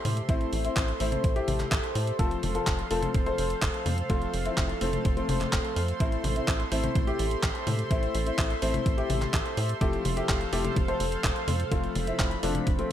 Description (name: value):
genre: italo disco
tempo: 126 BPM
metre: 4/4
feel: straight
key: A minor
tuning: A4 = 441 Hz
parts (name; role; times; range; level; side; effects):
- warm baby grand piano; melody; 0.0-12.9 s; F3 to C5; -33 LUFS; left 2 dB; ping-pong delay
- warm analog pad; sustained chords; 0.0-12.9 s; A4 to C6; -34 LUFS; right 2 dB; chorus
- warm electric grand piano; stabs; 0.0-12.9 s; F3 to C5; -36 LUFS; left 5 dB; none
- tight sequencer bass; bass; 0.0-12.8 s; F1 to A2; -31 LUFS; right 1 dB; none
- detuned 8-bit digital drum machine; drums; 0.1-12.9 s; handclaps, hi-hat, toms; -33 LUFS; left 1 dB; gated reverb
- electronic kick drum; drums; 0.3-12.8 s; none; -28 LUFS; equal; none
room: light reverb, digital ambience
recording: none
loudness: -25 LUFS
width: side -11 dB against mid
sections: 0.0-12.9 A section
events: none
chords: 0.0 Am; 2.2 F; 6.0 Am; 9.8 F